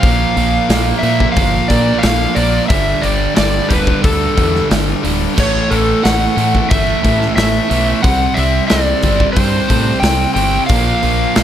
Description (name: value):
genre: classic rock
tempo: 90 BPM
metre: 4/4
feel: straight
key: unclear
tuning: A4 = 441 Hz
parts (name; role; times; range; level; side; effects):
- overdriven slide guitar; melody; 0.0-11.4 s; A4 to G5; -17 LUFS; equal; none
- crunchy overdriven guitar; riff; 0.0-11.4 s; G2 to C4; -19 LUFS; right 11 dB; none
- tight distorted guitar; riff; 0.0-11.4 s; G2 to C4; -21 LUFS; left 12 dB; distortion
- growling fingered electric bass; bass; 0.0-11.4 s; D1 to Bb2; -18 LUFS; equal; overdrive
- big rock drum kit; drums; 0.0-11.4 s; crash cymbal, hi-hat, kick drum, snare drum; -17 LUFS; equal; none
room: light reverb, small room ambience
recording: none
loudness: -11 LUFS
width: side -10 dB against mid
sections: 0.0-11.4 A section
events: none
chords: 0.0 Bb5; 2.7 Gsus2; 5.4 A5; 8.0 C5; 10.7 Bb5